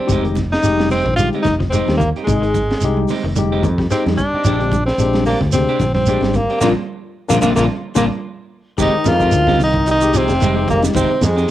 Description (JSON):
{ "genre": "afrobeat", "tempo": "110 BPM", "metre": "4/4", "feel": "swing 55% on 16ths", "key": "F dorian", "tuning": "A4 = 440 Hz", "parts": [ { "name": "clear tenor saxophone", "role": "melody", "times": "0.0-11.5 s", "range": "Ab3 to F4", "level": "-18 LUFS", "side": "equal", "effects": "cassette tape, plate reverb" }, { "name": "clean electric guitar", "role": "stabs", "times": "0.0-11.5 s", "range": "Ab3 to G4", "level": "-26 LUFS", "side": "right 6 dB", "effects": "spring reverb, cassette tape, plate reverb" }, { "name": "barky tine electric piano", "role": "accompaniment", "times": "0.1-11.1 s", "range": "Ab3 to Bb4", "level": "-22 LUFS", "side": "left 7 dB", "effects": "cassette tape, plate reverb" }, { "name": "clean electric guitar", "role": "arpeggios", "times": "0.1-11.1 s", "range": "Bb2 to Ab3", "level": "-24 LUFS", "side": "left 5 dB", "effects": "wide subtle chorus, cassette tape, plate reverb" }, { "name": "fingered electric bass", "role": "bass", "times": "0.1-11.4 s", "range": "F1 to F2", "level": "-20 LUFS", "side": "equal", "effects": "none" }, { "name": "crunchy breakbeat drum kit", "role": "drums", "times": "0.1-11.5 s", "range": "hi-hat, kick drum, snare drum", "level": "-23 LUFS", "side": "equal", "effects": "cassette tape" }, { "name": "shekere", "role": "percussion", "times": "0.1-11.5 s", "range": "none", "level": "-21 LUFS", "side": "right 3 dB", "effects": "none" }, { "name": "congas", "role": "percussion", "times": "0.4-11.4 s", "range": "none", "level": "-26 LUFS", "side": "right 8 dB", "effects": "none" }, { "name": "brilliant bass trombone", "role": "second line", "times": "8.8-11.5 s", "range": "Ab2 to F3", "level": "-27 LUFS", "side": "left 6 dB", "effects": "none" }, { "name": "trombone with cup mute", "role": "second line", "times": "8.8-11.5 s", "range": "Ab3 to F4", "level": "-24 LUFS", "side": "right 5 dB", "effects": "none" } ], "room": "moderate small room reverb, RT60 0.5 s", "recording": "home recording on cassette", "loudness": "-14 LUFS", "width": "side -13 dB against mid", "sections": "0.0-8.8 A section; 8.8-11.5 B section", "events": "band accent 6.6-8.8", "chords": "0.1 Fm9; 4.4 Bb13; 8.8 Fm9", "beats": "| 0.10 0.64 1.18 1.73 | 2.27 2.81 3.36 3.90 | 4.45 4.99 5.53 6.08 | 6.62 7.16 7.70 8.25 | 8.79 9.33 9.87 10.41 | 10.95 11.49" }